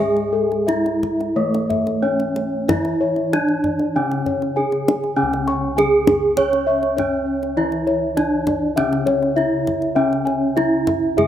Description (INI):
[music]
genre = Javanese gamelan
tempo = 99 BPM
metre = 4/4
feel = uneven beats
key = C# pelog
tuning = A4 = 438 Hz
[part]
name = gamelan-type bronze metallophone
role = melody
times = 0.0-11.3 s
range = A3 to C#5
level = -19 LUFS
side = right 2 dB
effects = none
[part]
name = gamelan-type bronze metallophone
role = accompaniment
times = 0.0-11.3 s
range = C#3 to C#4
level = -28 LUFS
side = left 1 dB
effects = none
[part]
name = gamelan-type bossed gongs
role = arpeggios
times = 0.0-11.3 s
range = A4 to C#6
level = -23 LUFS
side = left 4 dB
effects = none
[part]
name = gamelan-type bronze metallophone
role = arpeggios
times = 0.0-11.3 s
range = A4 to C#6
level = -31 LUFS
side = right 7 dB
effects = none
[part]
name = gamelan-type bossed gongs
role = bass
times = 0.0-11.3 s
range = C#2 to G#4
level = -29 LUFS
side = left 1 dB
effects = none
[part]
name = kendang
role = percussion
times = 0.2-11.3 s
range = none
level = -24 LUFS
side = left 2 dB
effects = none
[sound]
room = light reverb, studio reverb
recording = rough home demo mix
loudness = -17 LUFS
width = side -10 dB against mid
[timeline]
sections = 0.0-5.2 A section; 5.2-11.3 B section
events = none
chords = none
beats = 0.68 1.36 2.03 | 2.69 3.33 3.96 4.57 | 5.18 5.78 6.37 6.97 | 7.57 8.17 8.77 9.37 | 9.96 10.57 11.18